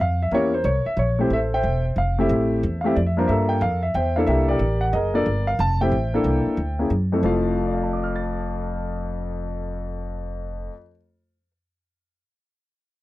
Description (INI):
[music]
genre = jazz piano trio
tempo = 182 BPM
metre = 3/4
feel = swing 64% on 8ths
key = F major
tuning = A4 = 442 Hz
[part]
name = warm grand piano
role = melody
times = 0.0-11.0 s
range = F2 to A6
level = -22 LUFS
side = left 1 dB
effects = none
[part]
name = upright bass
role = bass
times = 0.0-10.7 s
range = E1 to G2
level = -24 LUFS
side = equal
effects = none
[sound]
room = little or no reverb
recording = dry, close 1970s-style studio recording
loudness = -20 LUFS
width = side -17 dB against mid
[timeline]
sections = 0.0-3.3 A section; 3.3-7.2 B section; 7.2-9.2 C section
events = none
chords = 0.3 C7b9; 1.3 Fmaj7; 3.3 Gm9; 3.9 Am7; 4.3 C13; 4.9 Gbadd9; 5.3 Gm9; 5.9 Am7; 6.2 C13; 6.9 Am6; 7.2 F